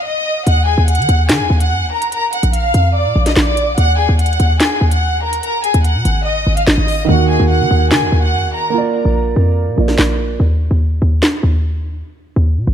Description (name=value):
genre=hip hop, drill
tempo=145 BPM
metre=4/4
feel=half-time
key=Eb harmonic minor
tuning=A4 = 440 Hz
part: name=warm studio violin section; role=melody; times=0.0-8.7 s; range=Ab4 to Gb6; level=-17 LUFS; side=equal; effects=tape echo
part: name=short 808-style bass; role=bass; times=0.5-12.7 s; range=Ab1 to Eb3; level=-14 LUFS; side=equal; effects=none
part: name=drill drum kit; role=drums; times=0.5-11.3 s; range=handclaps, hi-hat, snare drum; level=-17 LUFS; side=equal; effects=none
part: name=dark baby grand piano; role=accompaniment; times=7.0-10.4 s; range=Eb3 to D5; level=-17 LUFS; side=right 5 dB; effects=none
room=light reverb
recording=dark, warm production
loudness=-12 LUFS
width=side -9 dB against mid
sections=0.0-12.7 A section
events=break 0.0-0.5; hi-hats muted 7.1-12.7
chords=0.5 Ebm; 2.1 Bb; 3.8 Ebm; 5.4 Ab5; 7.1 Ebm; 8.7 Bb; 10.4 N.C.; 12.1 Abm (rootless)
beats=0.05 | 0.47 0.88 1.29 1.71 | 2.12 2.54 2.95 3.36 | 3.78 4.19 4.61 5.02 | 5.43 5.85 6.26 6.67 | 7.09 7.50 7.92 8.33 | 8.74 9.16 9.57 9.98 | 10.40 10.81 11.22 11.64 | 12.05 12.47